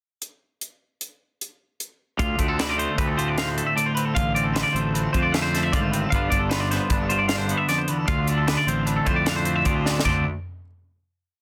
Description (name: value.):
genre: math rock and midwest emo.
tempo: 152 BPM.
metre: 5/4.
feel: straight.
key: D dorian.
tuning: A4 = 440 Hz.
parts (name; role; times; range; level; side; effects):
crisp fusion drum kit; drums; 0.2-10.1 s; crash cymbal, hi-hat, kick drum, snare drum, toms; -29 LUFS; equal; none.
twelve-string electric guitar; accompaniment; 2.2-10.3 s; D2 to F4; -28 LUFS; equal; none.
twangy electric guitar; arpeggios; 2.2-10.2 s; A4 to F5; -28 LUFS; equal; none.
fuzz fingered electric bass; bass; 2.2-10.2 s; G1 to F2; -29 LUFS; equal; overdrive.
room: light reverb.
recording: dense, heavily limited modern master.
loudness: -23 LUFS.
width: mono.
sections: 0.2-2.2 pickup bar; 2.2-10.1 A section; 10.1-11.4 final chord.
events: drum fill 9.9.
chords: 0.2 N.C.; 2.2 Dm7; 6.1 G7; 8.1 Dm7; 10.1 D7(no3).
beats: | 0.21 0.61 1.00 1.40 1.80 | 2.19 2.59 2.98 3.38 3.77 | 4.16 4.56 4.95 5.34 5.73 | 6.12 6.52 6.91 7.30 7.69 | 8.08 8.48 8.87 9.27 9.66 | 10.05.